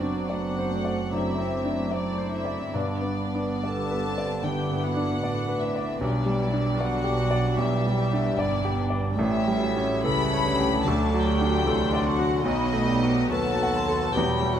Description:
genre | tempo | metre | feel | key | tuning
classical, romantic movement for piano and orchestra | 74 BPM | 4/4 | uneven beats, rubato | G major | A4 = 438 Hz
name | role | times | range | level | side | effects
clear grand piano | melody | 0.0-14.6 s | A1 to F#5 | -28 LUFS | equal | none
warm symphonic violin section | melody | 0.0-14.6 s | D5 to B5 | -32 LUFS | left 4 dB | none
dark clarinet | second line | 0.0-14.6 s | D4 to B4 | -35 LUFS | left 1 dB | none
mellow large flute ensemble | second line | 0.0-14.6 s | G5 to D6 | -36 LUFS | left 1 dB | none
warm symphonic violin section | second line | 0.0-14.6 s | B3 to G4 | -35 LUFS | left 3 dB | none
dark symphonic viola section | accompaniment | 0.0-14.6 s | D3 to D4 | -32 LUFS | right 1 dB | none
mellow bassoon | accompaniment | 0.0-14.6 s | D3 to C4 | -34 LUFS | right 1 dB | none
warm studio double bass section | bass | 0.0-14.6 s | E1 to D#2 | -33 LUFS | right 4 dB | none
warm symphonic cello section | bass | 0.0-14.6 s | D#2 to D3 | -33 LUFS | right 3 dB | none
mellow French horn section | sustained chords | 1.1-14.6 s | E3 to D4 | -35 LUFS | left 6 dB | none
timpani | percussion | 10.8-12.0 s | none | barely audible | none | none
room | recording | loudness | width
light reverb | close, detailed microphones | -23 LUFS | side -9 dB against mid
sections
0.0-14.6 A section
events
none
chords
0.0 D7/F#; 2.7 G; 6.0 G/B; 9.2 A7; 10.9 D; 12.5 B7

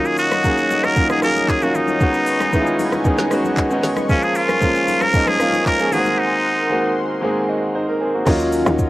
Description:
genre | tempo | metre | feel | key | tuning
amapiano | 115 BPM | 4/4 | straight | Eb minor | A4 = 438 Hz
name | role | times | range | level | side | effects
trumpet with straight mute | melody | 0.0-7.0 s | Db4 to Bb4 | -19 LUFS | equal | cassette tape
bright concert grand piano | accompaniment | 0.0-8.9 s | Eb3 to Eb5 | -19 LUFS | equal | cassette tape
warm analog pad | sustained chords | 0.0-8.9 s | Eb3 to Eb6 | -26 LUFS | equal | chorus, sidechain pumping, cassette tape
smooth R&B drum kit | drums | 0.0-8.9 s | crash cymbal, handclaps, hi-hat, kick drum, rim click, shaker, snare drum | -22 LUFS | equal | cassette tape
congas | percussion | 0.3-6.2 s | none | -30 LUFS | left 4 dB | none
tight log drum bass | bass | 8.3-8.9 s | Eb2 | -21 LUFS | equal | none
room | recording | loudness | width
small room ambience | home recording on cassette, lossy compression artefacts | -15 LUFS | side -17 dB against mid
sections
0.0-8.3 A section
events
break 6.2-8.3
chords
0.0 Ebm9; 2.0 Db9sus4; 4.1 Bbm7; 5.9 Ab9; 8.3 Ebm9

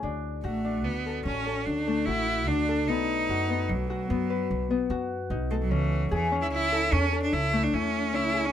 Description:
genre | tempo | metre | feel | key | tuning
contemporary instrumental, chamber music in an uneven meter | 148 BPM | 7/4 | straight | unclear | A4 = 445 Hz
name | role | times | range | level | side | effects
Celtic harp | arpeggios | 0.0-8.5 s | A3 to B4 | -30 LUFS | left 5 dB | none
upright bass | bass | 0.0-8.5 s | A1 to F#2 | -31 LUFS | right 1 dB | none
clear cello | melody | 0.4-8.5 s | E3 to E4 | -28 LUFS | right 2 dB | none
room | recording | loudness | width
light reverb | close, detailed microphones | -25 LUFS | side -10 dB against mid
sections
0.0-8.5 A section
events
none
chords
0.0 D; 2.9 B; 5.7 Amaj7/C#

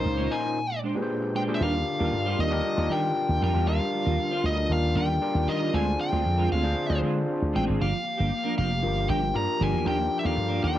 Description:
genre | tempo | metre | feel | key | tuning
pop | 116 BPM | 4/4 | straight | unclear | A4 = 441 Hz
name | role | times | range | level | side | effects
nasal lead guitar with a parked wah | melody | 0.0-10.8 s | C5 to Bb5 | -29 LUFS | left 1 dB | overdrive, slapback echo
overdriven tine electric piano | accompaniment | 0.0-10.8 s | Bb2 to C5 | -29 LUFS | left 2 dB | lush chorus
lush unison pad | sustained chords | 0.0-10.8 s | Bb2 to G5 | -36 LUFS | left 1 dB | chorus, phaser
clean electric guitar | riff | 0.0-10.8 s | F3 to Db5 | -32 LUFS | right 3 dB | analog chorus
slap bass with an envelope filter | bass | 0.0-10.8 s | F1 to Eb3 | -26 LUFS | equal | none
room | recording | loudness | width
little or no reverb | dry, close 1970s-style studio recording | -23 LUFS | side -12 dB against mid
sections
0.0-1.6 A section; 1.6-10.8 B section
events
lead electric guitar solo 0.0-1.6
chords
0.0 Dbmaj13; 0.6 Bb13; 1.6 Ebmaj9; 5.7 Dm7b5; 7.8 Gm7; 9.9 Ebmaj9

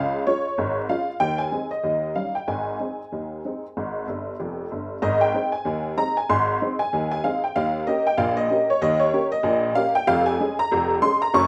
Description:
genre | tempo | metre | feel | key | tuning
ragtime piano | 95 BPM | 2/4 | swing 59% on 16ths | Ab major | A4 = 440 Hz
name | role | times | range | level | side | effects
honky-tonk upright piano | solo | 0.0-11.5 s | F1 to Db6 | -23 LUFS | equal | none
room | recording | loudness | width
light reverb | none | -23 LUFS | mono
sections
0.0-5.0 A section; 5.0-11.5 B section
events
honky-tonk piano fill 4.1-5.0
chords
0.0 Db; 1.2 Ab/Eb; 1.8 Eb7; 2.5 Ab; 7.6 Eb7; 10.1 Db/F

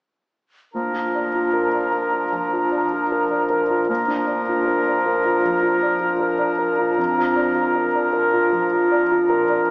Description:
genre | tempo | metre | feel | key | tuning
classical, romantic movement for piano and orchestra | 77 BPM | 4/4 | rubato | Bb major | A4 = 440 Hz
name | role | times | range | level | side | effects
warm concert grand piano | melody | 0.7-9.7 s | F2 to D5 | -20 LUFS | equal | none
clear clarinet | second line | 0.7-9.7 s | D4 | -30 LUFS | equal | none
mellow hollow silver concert flute | second line | 0.7-9.7 s | Bb5 | -25 LUFS | equal | none
warm oboe | second line | 0.7-9.7 s | Bb4 | -24 LUFS | equal | none
clear bassoon | accompaniment | 0.8-9.7 s | F3 | -27 LUFS | equal | none
room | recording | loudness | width
wet cathedral reverb, RT60 5.5 s | heard from further back in the room, small speaker sound | -17 LUFS | side -26 dB against mid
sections
0.7-9.7 A section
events
none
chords
0.7 Bb

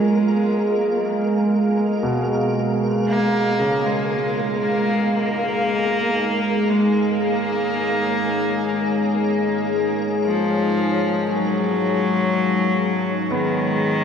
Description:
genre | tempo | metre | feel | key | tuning
dark ambient drone | 59 BPM | 4/4 | straight | unclear | A4 = 441 Hz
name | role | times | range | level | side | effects
warm cello | melody | 0.0-14.0 s | D#3 to Bb3 | -23 LUFS | left 1 dB | diffuse ambient delay
deep dark ambient pad | sustained chords | 0.0-14.0 s | G#3 to F5 | -24 LUFS | left 3 dB | chorus, built-in reverb
analog drone | drone | 0.0-14.0 s | Ab3 | -22 LUFS | right 2 dB | chorus
flickering grainy texture | texture | 0.0-14.0 s | Bb3 to Bb4 | -31 LUFS | equal | built-in reverb
warm grand piano | arpeggios | 2.0-14.0 s | B2 to B3 | -28 LUFS | right 1 dB | diffuse ambient delay
room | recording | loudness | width
wet huge ambient reverb, RT60 7.9 s | none | -18 LUFS | side -7 dB against mid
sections
0.0-14.0 A section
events
fade-in on cello 0.0-14.0; fade-out on synth texture 0.0-14.0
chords
0.0 Fm; 3.1 B6

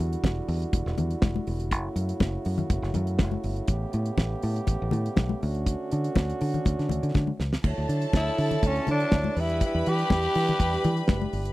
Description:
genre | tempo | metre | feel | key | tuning
disco | 122 BPM | 4/4 | straight | unclear | A4 = 440 Hz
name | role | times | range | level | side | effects
mellow French horn section | sustained chords | 0.0-11.5 s | C#3 to C#5 | -33 LUFS | right 2 dB | none
fingered electric bass | bass | 0.0-11.5 s | E1 to E3 | -28 LUFS | equal | none
damped 70s drum kit | drums | 0.0-11.5 s | crash cymbal, hi-hat, kick drum, snare drum | -25 LUFS | equal | none
congas | percussion | 0.2-11.3 s | none | -32 LUFS | left 6 dB | none
clear studio string section | second line | 7.6-11.5 s | A4 to B5 | -33 LUFS | right 1 dB | none
growling tenor saxophone | melody | 8.2-11.4 s | C#4 to G4 | -27 LUFS | equal | none
room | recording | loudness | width
little or no reverb | dry, close 1970s-style studio recording | -24 LUFS | side -17 dB against mid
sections
0.0-7.6 A section; 7.6-11.5 B section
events
drum fill 7.1-7.6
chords
0.0 Em9; 1.7 F#m7; 3.7 A9; 5.4 Dmaj7; 7.6 Dmaj9; 9.4 Em7

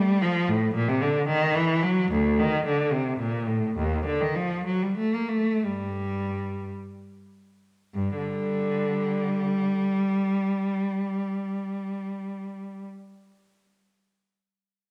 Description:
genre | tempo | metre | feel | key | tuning
classical, baroque-style suite movement for unaccompanied cello | 47-76 BPM (dotted quarters) | 6/8 | rubato | G minor | A4 = 440 Hz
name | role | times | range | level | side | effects
rich cello | solo | 0.0-12.8 s | D2 to Bb3 | -26 LUFS | equal | none
room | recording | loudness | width
wet recital hall reverb, RT60 1.6 s | none | -26 LUFS | mono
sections
0.0-7.9 A section; 7.9-12.8 B section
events
slowing down 2.9-7.9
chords
none

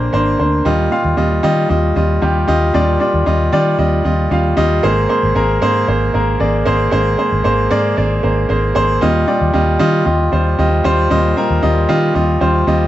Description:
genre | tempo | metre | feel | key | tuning
piano-driven pop | 115 BPM | 4/4 | straight | unclear | A4 = 441 Hz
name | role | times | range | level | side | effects
bright grand piano | accompaniment | 0.0-12.9 s | Ab2 to F5 | -14 LUFS | equal | none
vintage muted fingered electric bass | bass | 0.0-12.9 s | Ab1 to Eb3 | -17 LUFS | equal | none
room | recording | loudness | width
light reverb, studio ambience | nothing above 7.8 kHz | -12 LUFS | side -13 dB against mid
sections
0.7-12.9 A section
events
none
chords
0.0 Bbadd9; 0.7 Ebadd9; 4.8 Abadd9; 9.0 Ebadd9

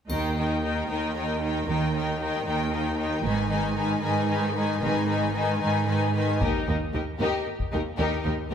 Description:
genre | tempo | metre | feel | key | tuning
cinematic, epic orchestral film score | 76 BPM (dotted quarters) | 6/8 | straight | unclear | A4 = 439 Hz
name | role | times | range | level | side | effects
rich symphonic violin section | second line | 0.1-8.5 s | G4 to Ab5 | -31 LUFS | left 3 dB | none
clear symphonic viola section | accompaniment | 0.1-8.5 s | Eb3 to Eb4 | -29 LUFS | left 2 dB | none
clear symphonic double bass section | bass | 0.1-8.5 s | Ab1 to Eb2 | -31 LUFS | right 3 dB | none
rich symphonic cello section | bass | 0.1-8.5 s | Eb2 to Ab2 | -28 LUFS | right 2 dB | none
triangle | percussion | 0.1-1.1 s | none | -44 LUFS | left 2 dB | none
rich symphonic violin section | melody | 6.4-8.5 s | Bb4 | -34 LUFS | left 6 dB | none
taiko ensemble | drums | 6.4-7.8 s | none | -34 LUFS | left 2 dB | none
room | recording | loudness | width
moderate concert hall reverb, RT60 1.8 s | none | -24 LUFS | side -8 dB against mid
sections
0.1-6.4 A section; 6.4-8.5 B section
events
build-up 6.4-8.5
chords
0.1 Eb; 3.2 Abm; 6.4 Eb

